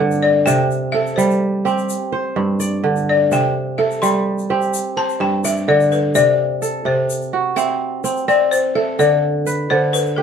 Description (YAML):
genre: west african traditional, West African string and xylophone music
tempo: 84 BPM (dotted quarters)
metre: 12/8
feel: straight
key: C lydian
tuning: A4 = 440 Hz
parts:
  - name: kora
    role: arpeggios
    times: 0.0-10.2 s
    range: G2 to D5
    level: -18 LUFS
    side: right 3 dB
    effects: none
  - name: egg shaker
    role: percussion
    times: 0.1-10.1 s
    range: none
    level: -30 LUFS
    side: left 5 dB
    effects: none
  - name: balafon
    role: melody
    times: 0.2-10.2 s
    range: A4 to C6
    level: -18 LUFS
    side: left 5 dB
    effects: none
room: wet studio reverb, RT60 0.6 s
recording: band playing live in one room, lossy compression artefacts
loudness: -15 LUFS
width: side -7 dB against mid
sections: 0.0-6.2 A section; 6.2-10.2 B section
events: balafon solo 0.0-6.2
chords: 0.5 C5; 1.9 G5; 3.3 C5; 4.7 G5; 6.2 C; 9.0 D5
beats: | 0.47 1.18 1.89 2.60 | 3.31 4.02 4.73 5.44 | 6.15 6.86 7.57 8.28 | 8.99 9.70